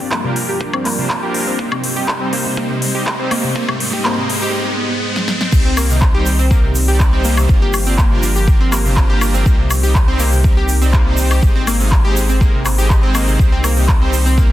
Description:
progressive house; 122 BPM; 4/4; straight; C minor; A4 = 440 Hz
lush unison pad; sustained chords; 0.0-14.5 s; G2 to G5; -26 LUFS; equal; chorus, sidechain pumping
analog pluck; arpeggios; 0.0-14.5 s; C3 to G4; -22 LUFS; equal; chorus, sidechain pumping, tape echo
soft supersaw; stabs; 0.0-14.5 s; G3 to F5; -23 LUFS; right 2 dB; sidechain pumping, low-pass filter, tape echo
electronic kick drum; drums; 0.0-14.5 s; -13 LUFS; equal; high-pass filter on kick
riser; sound effects; 1.3-5.5 s; -25 LUFS; equal
big-room dance drum kit; drums; 0.1-14.2 s; crash cymbal, handclaps, hi-hat, snare drum, woodblock; -22 LUFS; left 1 dB; overdrive
round analog bass; bass; 5.5-14.5 s; G1 to C2; -16 LUFS; equal; sidechain pumping
egg shaker; percussion; 5.5-14.5 s; -28 LUFS; right 5 dB
light reverb; dense, heavily limited modern master; -12 LUFS; side -14 dB against mid
0.0-5.5 A section; 5.5-14.5 B section
build-up 0.0-5.5; filter sweep on synth pluck 0.0-5.5; riser 1.3-5.5; drum fill 5.2-5.5; drop 5.5-14.5
0.0 Gm7; 1.6 Cm; 3.6 Ab; 5.5 Cm; 7.5 Gm7; 9.5 Cm; 11.4 Ab; 13.4 Cm

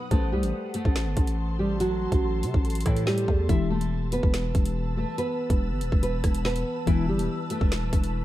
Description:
hip hop, drill; 142 BPM; 4/4; half-time; E minor; A4 = 440 Hz
nylon-string guitar; melody; 0.0-8.2 s; E3 to E5; -30 LUFS; right 1 dB; low-pass filter, tape echo
muted felt-like synth keys; accompaniment; 0.0-8.2 s; E3 to C5; -34 LUFS; left 6 dB; chorus, low-pass filter
ethereal airy pad; sustained chords; 0.0-8.2 s; A4 to E6; -37 LUFS; equal; ensemble chorus, built-in reverb, phaser
growling 808-style bass; bass; 0.1-8.2 s; D#1 to C3; -28 LUFS; equal
drill drum kit; drums; 0.1-8.1 s; hi-hat, kick drum, rim click, snare drum; -25 LUFS; equal
little or no reverb; dark, warm production; -23 LUFS; side -14 dB against mid
0.0-8.2 A section
0.1 Am7; 3.5 Em

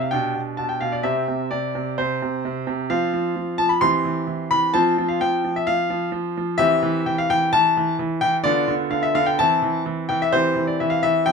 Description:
classical-period piano sonatina; 129 BPM; 4/4; straight; C major; A4 = 437 Hz
clear concert grand piano; solo; 0.0-11.3 s; B2 to C6; -19 LUFS; left 1 dB
light reverb; minimal, uncompressed stereo recording; -19 LUFS; side -5 dB against mid
0.0-11.3 A section
0.1 G/B; 1.1 C; 2.9 F5; 3.8 C/E; 4.8 F5; 6.6 C/E; 8.5 Dm69; 9.4 C/E

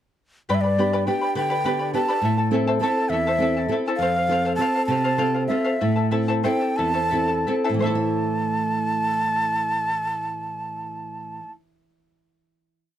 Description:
andean folk, Andean ensemble; 55-69 BPM (dotted quarters); 6/8; straight; A minor; A4 = 440 Hz
breathy large quena; melody; 0.5-11.5 s; D5 to A5; -24 LUFS; equal
charango; accompaniment; 0.5-11.6 s; E4 to B5; -27 LUFS; left 3 dB
nylon-string guitar; accompaniment; 0.5-11.6 s; E2 to E5; -24 LUFS; right 1 dB
light reverb; dark, warm production; -20 LUFS; side -11 dB against mid
0.5-7.8 A section; 7.8-12.2 final chord
slowing down 4.0-7.8
0.5 G; 2.2 Am; 4.0 F; 5.8 Am

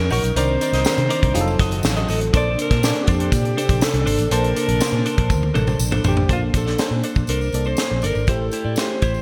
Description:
polished 1980s jazz-funk pop; 121 BPM; 4/4; straight; Bb major; A4 = 443 Hz
breathy alto saxophone; melody; 0.0-9.2 s; F4 to D5; -27 LUFS; equal
FM electric piano; accompaniment; 0.0-9.2 s; Eb3 to A5; -28 LUFS; equal; lush chorus
phased string machine; sustained chords; 0.2-6.3 s; C3 to Eb4; -34 LUFS; equal
clean electric guitar; riff; 0.0-9.2 s; D4 to Eb5; -30 LUFS; equal; subtle chorus
vintage muted fingered electric bass; bass; 0.0-9.2 s; F1 to C3; -24 LUFS; equal
tight funk drum kit; drums; 0.1-9.1 s; hi-hat, kick drum, snare drum, toms; -24 LUFS; equal; gated reverb
tambourine; percussion; 0.1-9.2 s; -38 LUFS; equal
moderate lush hall reverb, RT60 1.8 s; bright 1980s-style digital production; -19 LUFS; mono
0.0-6.3 A section; 6.3-9.2 B section
drum fill 5.3-6.3
0.4 Cm9; 1.4 F7b9; 2.3 Bbmaj9; 8.3 Am7

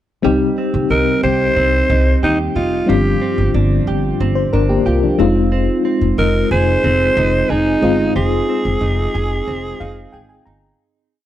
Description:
pop; 91 BPM; 4/4; straight; A4 = 440 Hz
FM electric piano with auto-pan; accompaniment; 0.2-10.8 s; F3 to Bb5; -18 LUFS; left 4 dB
direct-recorded clean electric guitar; riff; 0.2-11.2 s; F3 to Ab4; -23 LUFS; right 6 dB; lush chorus, tape echo
upright bass; bass; 0.2-10.7 s; F1 to Eb2; -18 LUFS; equal
breathy alto saxophone; melody; 0.9-10.4 s; Eb4 to C5; -18 LUFS; equal
small room reverb; dry, close 1970s-style studio recording; -13 LUFS; side -12 dB against mid
0.2-10.8 verse
fade-out 8.2-10.8; FM electric piano fill 9.5-10.8
0.2 Cm; 2.9 G7sus4; 5.2 Fm7

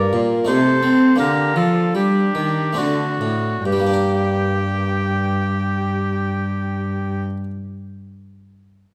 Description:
classical, baroque-style sonata movement with continuo; 66-88 BPM; 3/4; straight; G minor; A4 = 439 Hz
dark violin; melody; 0.0-7.2 s; D4 to G5; -31 LUFS; equal
warm oboe; second line; 0.0-7.2 s; F#4 to D5; -26 LUFS; equal
harpsichord; accompaniment; 0.0-7.5 s; G2 to Bb4; -26 LUFS; equal
rich cello; bass; 0.0-7.2 s; G2 to C4; -22 LUFS; equal
moderate recital hall reverb, RT60 1.5 s; -19 LUFS; mono
0.0-3.7 A section; 3.7-8.9 B section
slowing down 0.0-3.7
0.5 Adim/C; 1.2 Gm/D; 2.8 D7; 3.7 Gm

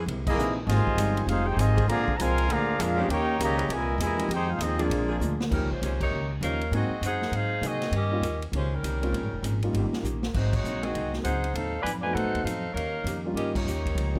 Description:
jazz, big band swing; 199 BPM; 4/4; swing 62% on 8ths; Eb mixolydian from 5.5 s; A4 = 440 Hz
mellow saxophone section; sustained chords; 0.0-5.2 s; Eb3 to Bb4; -39 LUFS; equal
upright bass; bass; 0.0-14.2 s; F1 to C3; -31 LUFS; equal
archtop guitar, miked and amplified; accompaniment; 0.1-14.2 s; F2 to Ab4; -40 LUFS; equal
swinging big-band drum kit; drums; 0.1-14.2 s; crash cymbal, hi-hat, kick drum, ride cymbal, snare drum; -37 LUFS; equal
mellow trumpet section; melody; 0.3-5.4 s; Bb3 to C6; -30 LUFS; equal
clear trombone section; second line; 0.3-5.4 s; Bb2 to G4; -34 LUFS; equal
warm grand piano; accompaniment; 0.4-14.2 s; E3 to G#4; -35 LUFS; equal
mellow saxophone section; melody; 5.5-14.2 s; G3 to Ab5; -33 LUFS; equal
light reverb; close, detailed microphones; -27 LUFS; mono
0.0-5.5 A section; 5.5-14.2 B section
band accent 0.2, 6.0, 10.5, 13.5; drum fill 5.2-5.5, 10.0-10.3
0.1 C7alt; 0.7 Fm7; 1.9 Bb7; 3.1 Eb7; 3.7 C7alt; 4.3 Fm7; 4.9 Bb7; 5.5 Eb7; 6.7 Ab7; 7.9 Eb7; 9.1 Bbm7; 9.7 Eb7; 10.3 Ab7; 11.5 Adim7; 12.8 Eb7

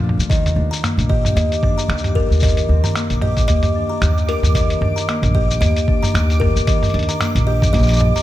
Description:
folktronica; 113 BPM; 4/4; swing 56% on 16ths; Eb lydian; A4 = 440 Hz
Celtic harp; arpeggios; 0.0-8.2 s; Bb2 to G4; -24 LUFS; left 4 dB; tape echo
upright bass; bass; 0.0-8.1 s; Bb1 to Eb2; -18 LUFS; equal; tube saturation
lo-fi sampler-style drum kit; drums; 0.0-8.2 s; finger snaps, hi-hat, shaker, toms; -21 LUFS; right 1 dB; small room ambience
buzzing kalimba; second line; 0.3-8.2 s; Bb4 to Bb5; -23 LUFS; right 1 dB; tape echo
electronic kick drum; drums; 0.3-7.9 s; -18 LUFS; equal; small room ambience
backwards swelling texture; texture; 1.1-8.2 s; D6; -30 LUFS; right 1 dB; built-in reverb
moderate echo chamber reverb, RT60 2.3 s; -14 LUFS; side -14 dB against mid
0.0-8.2 A section
0.3 Ebmaj7

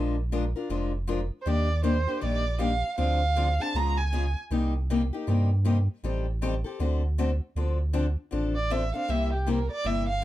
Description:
acoustic string swing (jazz manouche); 158 BPM; 4/4; swing 62% on 8ths; A4 = 441 Hz
picked steel-string acoustic guitar; accompaniment; 0.0-10.2 s; C3 to Bb4; -30 LUFS; left 4 dB
sub bass with octave; bass; 0.0-10.2 s; F1 to G2; -26 LUFS; right 1 dB
warm violin; melody; 1.4-4.4, 8.6-10.2 s; G4 to Bb5; -29 LUFS; right 3 dB
light reverb; dark, warm production; -25 LUFS; side -14 dB against mid
0.0-7.6 A section; 7.6-10.2 B section
violin solo 7.6-10.2
0.0 Bb7; 1.5 Ebmaj7; 3.0 Dm7b5; 3.8 C#7; 4.5 Cm7; 6.0 Am7b5; 6.8 D7; 7.6 Dm7; 9.1 C7

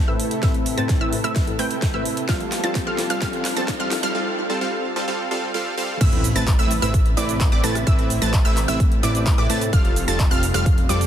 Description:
EDM, festival progressive house; 129 BPM; 4/4; straight; A minor; A4 = 440 Hz
lush unison pad; sustained chords; 0.0-11.1 s; C3 to B4; -30 LUFS; right 1 dB; chorus, sidechain pumping
wide unison pluck; arpeggios; 0.0-11.1 s; D6 to A6; -28 LUFS; equal; sidechain pumping, ping-pong delay
supersaw stab; riff; 0.0-11.1 s; G3 to A5; -25 LUFS; right 1 dB; sidechain pumping, low-pass filter, ping-pong delay
riser and impact; sound effects; 1.2-7.9 s; -34 LUFS; equal
dark concert grand piano; accompaniment; 0.1-4.0 s; A2 to C5; -30 LUFS; left 5 dB; sidechain pumping, ping-pong delay
big-room dance drum kit; drums; 0.2-11.1 s; crash cymbal, handclaps, hi-hat, rim click, shaker, snare drum; -29 LUFS; right 2 dB; high-pass filter on snare, high-pass filter on hats, high-pass filter on cymbals, high-pass filter on perc, high-pass filter on room
electronic kick drum; drums; 0.4-10.8 s; -19 LUFS; equal
fat analog bass; bass; 6.0-11.1 s; F1 to A2; -24 LUFS; equal; sidechain pumping
light reverb, digital ambience; dense, heavily limited modern master, high-pass filter; -18 LUFS; side -10 dB against mid
0.0-6.0 A section; 6.0-11.1 B section
build-up 0.0-6.0; drum fill 0.0-4.1; filter sweep on supersaw synth 0.0-6.0; filter sweep 0.0-6.0; drop 6.0-11.1; impact 6.0-7.9
0.0 Amadd9; 2.3 Fadd9; 6.0 Amadd9; 9.7 Fadd9

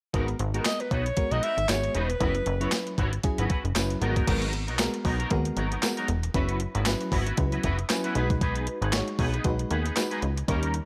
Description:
early-eighties boogie funk; 116 BPM; 4/4; swing 56% on 16ths; G# minor; A4 = 440 Hz
FM electric piano with tremolo; accompaniment; 0.1-10.8 s; F#3 to G#5; -35 LUFS; equal
clean electric guitar; riff; 0.1-10.8 s; F#3 to C#5; -36 LUFS; equal; ensemble chorus
plucky analog bass; bass; 0.1-10.8 s; E1 to D#2; -31 LUFS; equal
crisp 8-bit digital drum machine; drums; 0.1-10.9 s; crash cymbal, handclaps, hi-hat, kick drum, snare drum; -31 LUFS; equal; overdrive
breathy alto saxophone; melody; 0.7-3.0 s; B4 to E5; -31 LUFS; equal; slapback echo
tambourine; percussion; 0.7-10.1 s; -40 LUFS; equal
light reverb, digital ambience; -27 LUFS; mono
0.1-4.3 A section; 4.3-10.9 B section
FM electric piano fill 7.4-8.4
0.1 G#m9; 2.2 F#7sus4; 4.0 G#m9; 6.3 F#7sus4; 8.2 B6

